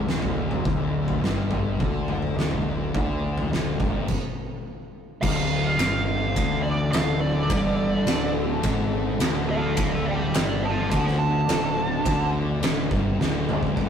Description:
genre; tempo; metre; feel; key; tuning
stoner and doom metal; 105 BPM; 4/4; straight; D minor; A4 = 440 Hz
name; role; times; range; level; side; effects
overtone-sweeping drone; sustained chords; 0.0-13.9 s; D3 to A4; -35 LUFS; left 1 dB; chorus, built-in reverb, phaser
thick fuzz guitar; riff; 0.0-13.9 s; D2 to D3; -28 LUFS; left 8 dB; distortion
thick fuzz guitar; riff; 0.0-13.9 s; D2 to D3; -31 LUFS; right 7 dB; distortion
fuzz picked electric bass; bass; 0.0-13.9 s; D1 to D2; -29 LUFS; equal; overdrive
oversized low-tuned drum kit; drums; 0.1-13.9 s; crash cymbal, kick drum, ride cymbal, snare drum, toms; -26 LUFS; right 1 dB; none
fuzz lead guitar; melody; 5.2-12.3 s; A4 to A5; -27 LUFS; right 3 dB; wah, distortion
room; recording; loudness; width
moderate studio reverb, RT60 0.5 s; rough rehearsal-room recording, warm saturation; -21 LUFS; side -8 dB against mid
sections
0.0-5.2 A section; 5.2-13.9 B section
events
stop 4.1-5.2; lead electric guitar solo 5.2-13.9; drum fill 13.2-13.9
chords
0.0 Dm

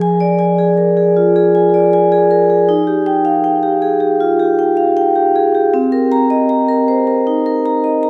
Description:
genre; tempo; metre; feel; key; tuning
classical, contemporary piece for solo vibraphone; 78 BPM; 4/4; straight; Eb major; A4 = 440 Hz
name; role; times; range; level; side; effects
vibraphone with medium hard mallets; solo; 0.0-8.1 s; F3 to Bb5; -14 LUFS; equal; none
room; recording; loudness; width
wet cathedral reverb, RT60 6.8 s; recorded in a church or concert hall; -13 LUFS; mono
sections
0.0-8.1 A section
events
none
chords
0.0 Bb7/F; 2.7 Ebadd9; 5.7 Cm7

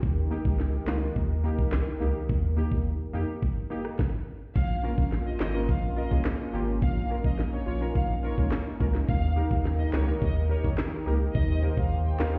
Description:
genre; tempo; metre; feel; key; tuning
dancehall; 106 BPM; 4/4; straight; Bb dorian; A4 = 444 Hz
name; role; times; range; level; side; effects
warm analog pad; sustained chords; 0.0-12.4 s; Eb3 to C5; -38 LUFS; equal; chorus, sidechain pumping
saturated sub bass; bass; 0.0-12.4 s; Ab1 to F2; -30 LUFS; equal; none
island pop drum kit; drums; 0.0-12.3 s; crash cymbal, handclaps, hi-hat, kick drum, rim click, snare drum; -31 LUFS; equal; none
glassy wavetable pluck; accompaniment; 0.3-12.4 s; Bb3 to Db5; -38 LUFS; equal; chorus
rich studio violin section; melody; 4.6-12.3 s; Db5 to G5; -40 LUFS; equal; delay
room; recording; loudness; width
digital ambience; heard muffled through a wall, stone room reverb, EQ; -27 LUFS; mono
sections
0.0-4.6 A section; 4.6-12.4 B section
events
none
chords
0.0 Eb; 4.6 Bbm; 9.1 Eb

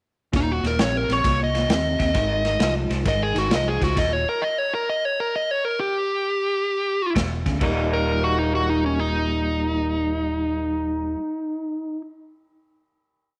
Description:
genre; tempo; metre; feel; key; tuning
electric blues shuffle; 132 BPM; 4/4; swing 67% on 8ths; Eb mixolydian; A4 = 442 Hz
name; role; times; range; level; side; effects
electric guitar through a small old amp; riff; 0.3-4.2, 7.1-11.2 s; Eb2 to Eb4; -29 LUFS; equal; harmonic tremolo
fingered electric bass; bass; 0.3-4.2, 7.2-11.1 s; Eb1 to Eb2; -29 LUFS; equal; none
crunchy breakbeat drum kit; drums; 0.3-4.1, 7.2-7.8 s; crash cymbal, kick drum, ride cymbal, snare drum; -28 LUFS; equal; none
dark smooth lead guitar; melody; 0.4-12.0 s; Db4 to Eb5; -25 LUFS; equal; overdrive
room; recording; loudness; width
moderate echo chamber reverb, RT60 1.4 s, small room ambience; none; -23 LUFS; mono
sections
0.3-7.6 head; 7.6-11.2 final chord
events
stop 4.0-7.2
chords
0.3 Eb5; 2.1 Ab; 4.0 Eb; 7.2 E5; 7.6 Eb

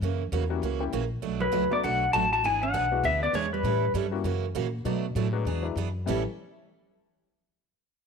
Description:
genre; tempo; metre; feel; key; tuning
country, western swing; 198 BPM; 4/4; swing 61% on 8ths; unclear; A4 = 439 Hz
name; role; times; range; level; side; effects
picked steel-string acoustic guitar; accompaniment; 0.0-6.2 s; A2 to A4; -32 LUFS; right 12 dB; none
upright bass; bass; 0.0-6.2 s; G#1 to B2; -30 LUFS; left 1 dB; none
warm upright piano; accompaniment; 0.5-6.2 s; F#3 to G4; -34 LUFS; left 11 dB; none
pedal steel guitar; melody; 1.4-3.9 s; B4 to A5; -25 LUFS; left 3 dB; none
hollow-body jazz guitar; second line; 1.4-3.9 s; F#3 to F#4; -35 LUFS; right 10 dB; none
room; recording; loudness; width
moderate echo chamber reverb, RT60 1.5 s, small room ambience; 1960s-style stereo with parts hard left and right; -25 LUFS; side -6 dB against mid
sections
0.0-6.1 A section; 6.1-7.3 B section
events
none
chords
0.0 F#7b9; 1.2 Bm7; 2.4 E9; 3.6 A9; 4.2 F#7; 4.9 Bm7; 5.5 E9; 6.1 A9

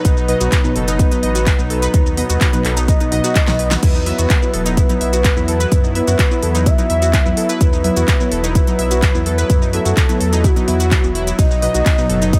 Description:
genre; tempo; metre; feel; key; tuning
progressive house; 127 BPM; 4/4; straight; unclear; A4 = 440 Hz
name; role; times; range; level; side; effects
soft octave-layered synth lead; melody; 0.0-12.4 s; F#4 to E5; -24 LUFS; equal; chorus, tremolo, tape echo
filtered supersaw swell; sustained chords; 0.0-12.4 s; F#3 to E4; -27 LUFS; equal; sidechain pumping
analog pluck; arpeggios; 0.0-12.4 s; E3 to E5; -28 LUFS; equal; chorus, sidechain pumping, tape echo
unison pluck; stabs; 0.0-12.4 s; B2 to B4; -26 LUFS; equal; sidechain pumping
round analog bass; bass; 0.0-12.4 s; E1 to F#2; -22 LUFS; equal; sidechain pumping
electronic kick drum; drums; 0.0-12.4 s; none; -17 LUFS; equal; none
pop drum kit; drums; 0.0-12.4 s; crash cymbal, handclaps, hi-hat, ride cymbal, shaker, snare drum; -25 LUFS; equal; none
room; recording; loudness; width
little or no reverb; none; -15 LUFS; mono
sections
0.0-12.4 A section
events
drum fill 3.5-3.8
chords
0.0 B; 3.8 Esus2; 11.4 B

